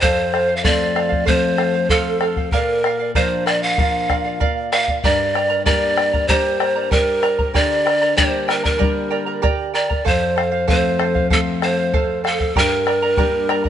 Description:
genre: andean folk, Andean ensemble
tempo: 96 BPM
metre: 4/4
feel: straight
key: G minor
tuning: A4 = 443 Hz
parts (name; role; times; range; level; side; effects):
- breathy mellow pan flute; melody; 0.0-13.7 s; A4 to F5; -18 LUFS; equal; none
- charango; accompaniment; 0.0-13.7 s; G4 to Bb5; -23 LUFS; right 7 dB; none
- nylon-string guitar; accompaniment; 0.0-13.7 s; F2 to D4; -25 LUFS; left 5 dB; none
- bombo; percussion; 0.0-13.7 s; none; -22 LUFS; left 2 dB; none
room: moderate plate reverb, RT60 2.5 s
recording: nothing above 10.7 kHz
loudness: -15 LUFS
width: side -10 dB against mid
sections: 0.0-13.7 A section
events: none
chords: 0.0 F; 2.5 Bb; 5.0 Gm; 10.0 F; 12.6 Gm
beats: | 0.02 0.65 1.27 1.90 | 2.53 3.16 3.78 4.41 | 5.04 5.66 6.29 6.92 | 7.54 8.17 8.80 9.42 | 10.05 10.68 11.30 11.93 | 12.55 13.18

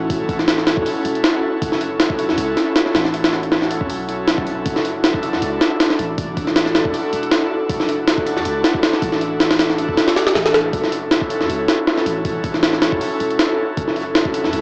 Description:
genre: drum and bass, jungle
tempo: 158 BPM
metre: 4/4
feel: swing 54% on 16ths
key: F# minor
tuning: A4 = 440 Hz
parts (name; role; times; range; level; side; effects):
- long sustained 808-style bass; bass; 0.0-14.6 s; E1 to F#2; -31 LUFS; equal; none
- airy breathy pad; sustained chords; 0.1-14.6 s; C#4 to A4; -20 LUFS; equal; chorus, vintage 12-bit sampler grit, cassette tape
- jungle sampler-style drum kit; drums; 0.1-14.6 s; hi-hat, kick drum, snare drum; -17 LUFS; equal; cassette tape
room: wet small room reverb, RT60 0.6 s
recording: home recording on cassette, small speaker sound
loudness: -15 LUFS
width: side -34 dB against mid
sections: 0.0-14.6 A section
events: none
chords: 0.0 F#m7; 4.7 Dadd9; 10.7 F#m7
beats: | 0.10 0.48 0.86 1.24 | 1.62 2.00 2.38 2.76 | 3.14 3.52 3.90 4.28 | 4.66 5.04 5.42 5.80 | 6.18 6.56 6.94 7.32 | 7.70 8.07 8.46 8.84 | 9.21 9.59 9.97 10.35 | 10.73 11.11 11.49 11.87 | 12.25 12.63 13.01 13.39 | 13.77 14.15 14.53

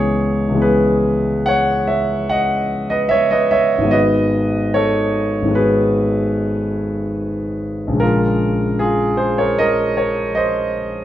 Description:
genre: classical, impressionist solo piano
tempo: 68-79 BPM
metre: 5/4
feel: rubato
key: C# minor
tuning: A4 = 440 Hz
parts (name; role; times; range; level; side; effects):
- warm concert grand piano; solo; 0.0-11.0 s; G#1 to F#5; -15 LUFS; equal; none
room: moderate recital hall reverb, RT60 1.5 s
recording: dark, warm production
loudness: -15 LUFS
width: side -12 dB against mid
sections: 0.0-11.0 A section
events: none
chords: 0.0 C#m7; 3.9 G#m7; 8.0 A#m7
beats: 0.60 1.46 2.29 3.12 | 3.94 4.77 5.59 6.39 7.20 | 8.02 8.81 9.58 10.36

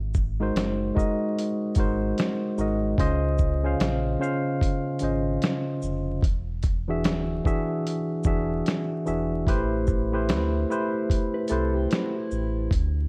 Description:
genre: lo-fi hip hop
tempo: 74 BPM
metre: 4/4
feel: swing 61% on 16ths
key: unclear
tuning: A4 = 440 Hz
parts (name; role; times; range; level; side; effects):
- sub bass with octave; bass; 0.0-13.1 s; D1 to D2; -31 LUFS; equal; none
- dusty soul sampler-style drum kit; drums; 0.1-12.9 s; hi-hat, kick drum, shaker, snare drum; -28 LUFS; equal; vintage 12-bit sampler grit
- tine electric piano; accompaniment; 0.4-12.7 s; C#3 to E#5; -28 LUFS; equal; cassette tape
- mellow electric guitar; second line; 11.3-12.7 s; E4 to B4; -37 LUFS; equal; tape echo
room: light reverb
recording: vinyl crackle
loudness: -26 LUFS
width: mono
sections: 0.0-13.1 A section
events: none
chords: 0.0 G#7; 3.0 C#maj7; 6.2 E7; 9.5 Am7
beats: 0.55 1.36 2.17 | 2.98 3.79 4.60 5.42 | 6.22 7.04 7.85 8.66 | 9.47 10.28 11.09 11.90 | 12.71

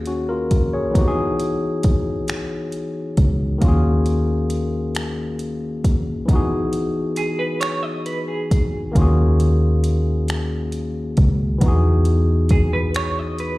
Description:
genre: slow six-eight R&B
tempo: 45 BPM (dotted quarters)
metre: 6/8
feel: straight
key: Eb phrygian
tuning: A4 = 440 Hz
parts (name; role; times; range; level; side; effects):
- barky tine electric piano; accompaniment; 0.0-13.6 s; Eb3 to Db5; -22 LUFS; left 2 dB; slapback echo
- vintage muted fingered electric bass; bass; 0.0-13.6 s; Db2 to E2; -19 LUFS; equal; none
- smooth R&B drum kit; drums; 0.1-13.6 s; finger snaps, hi-hat, kick drum; -20 LUFS; equal; none
- semi-hollow electric guitar; second line; 7.2-13.6 s; G#4 to D#5; -25 LUFS; right 3 dB; tremolo, slapback echo
room: little or no reverb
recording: live gig heard through the venue's PA, recital hall reverb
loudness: -17 LUFS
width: side -19 dB against mid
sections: 0.0-13.6 A section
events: none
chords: 0.0 Ebm11; 1.0 Emaj9; 3.6 Ebm11; 6.3 Emaj9; 9.0 Ebm11; 11.6 Emaj9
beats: | 0.95 2.28 | 3.62 4.95 | 6.28 7.62 | 8.95 10.28 | 11.62 12.95

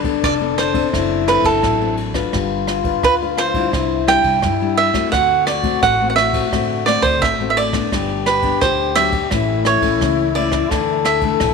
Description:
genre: samba and choro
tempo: 86 BPM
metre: 4/4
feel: straight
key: G major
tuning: A4 = 440 Hz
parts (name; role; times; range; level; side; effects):
- warm trombone; second line; 0.0-11.5 s; D4 to A4; -21 LUFS; left 12 dB; none
- nylon-string guitar; accompaniment; 0.0-11.5 s; G2 to B4; -23 LUFS; left 11 dB; none
- upright bass; bass; 0.0-11.5 s; F1 to G2; -26 LUFS; right 2 dB; none
- jazz brush drum kit; drums; 0.0-11.5 s; kick drum, ride cymbal, rim click; -24 LUFS; right 2 dB; none
- cavaquinho; melody; 0.2-11.5 s; A4 to G5; -18 LUFS; right 6 dB; none
room: light reverb, studio reverb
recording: 1960s-style stereo with parts hard left and right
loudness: -14 LUFS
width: side -5 dB against mid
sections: 0.0-11.5 A section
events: none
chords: 0.0 Gadd9; 0.9 D7/F#; 2.3 G7; 3.7 Cadd9; 5.1 D7; 7.9 Gmaj7; 9.3 A; 10.7 Dsus2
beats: 0.23 0.94 1.64 | 2.33 3.03 3.73 4.43 | 5.13 5.83 6.53 7.23 | 7.92 8.62 9.32 10.02 | 10.71 11.41

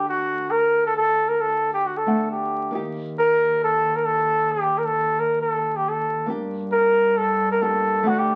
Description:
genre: klezmer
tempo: 135 BPM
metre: 4/4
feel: straight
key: unclear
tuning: A4 = 440 Hz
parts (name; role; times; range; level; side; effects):
- warm flugelhorn; melody; 0.0-8.4 s; F#4 to Bb4; -22 LUFS; equal; none
- nylon-string guitar; accompaniment; 0.0-8.4 s; A3 to F#5; -30 LUFS; equal; none
- dark double bass; bass; 0.0-8.4 s; D2 to G2; -36 LUFS; equal; none
room: moderate studio reverb, RT60 0.6 s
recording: very old 78 rpm record, vinyl crackle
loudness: -22 LUFS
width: mono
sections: 0.0-8.4 A section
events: none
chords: 0.0 D; 2.7 Eb; 6.3 Gm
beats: 0.08 0.52 | 0.97 1.41 1.85 2.30 | 2.74 3.19 3.63 4.08 | 4.52 4.96 5.41 5.85 | 6.29 6.74 7.18 7.62 | 8.06

